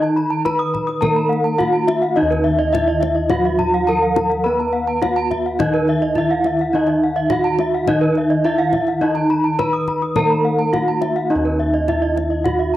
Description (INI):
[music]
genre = Balinese gamelan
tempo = 105 BPM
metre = 4/4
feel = straight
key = Eb pelog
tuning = A4 = 440 Hz
[part]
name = gamelan-type bronze metallophone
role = melody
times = 0.0-12.8 s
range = Eb4 to Cb5-40c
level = -20 LUFS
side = right 2 dB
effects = plate reverb
[part]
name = gamelan-type bronze metallophone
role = accompaniment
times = 0.0-11.3 s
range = Eb3 to Cb4-40c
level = -28 LUFS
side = left 4 dB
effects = cassette tape
[part]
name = gamelan-type bronze metallophone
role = arpeggios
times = 0.0-12.7 s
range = Cb5-40c to Eb6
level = -23 LUFS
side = right 4 dB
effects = cassette tape, plate reverb
[part]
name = gamelan-type bossed gongs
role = bass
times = 0.0-12.8 s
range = Eb2 to Cb5-40c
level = -23 LUFS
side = equal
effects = none
[part]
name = kendang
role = percussion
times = 0.0-12.6 s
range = none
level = -26 LUFS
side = left 6 dB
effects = none
[part]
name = gamelan-type bronze metallophone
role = arpeggios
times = 0.2-12.8 s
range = Eb5 to Eb6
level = -21 LUFS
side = left 4 dB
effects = cassette tape, plate reverb
[sound]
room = wet small room reverb, RT60 0.5 s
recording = home recording on cassette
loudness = -15 LUFS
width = side -14 dB against mid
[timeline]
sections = 0.0-11.3 A section; 11.3-12.8 A section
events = none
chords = none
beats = 0.45 1.02 1.59 | 2.16 2.73 3.30 3.88 | 4.45 5.02 5.59 6.16 | 6.73 7.30 7.88 8.45 | 9.02 9.59 10.16 10.73 | 11.30 11.88 12.45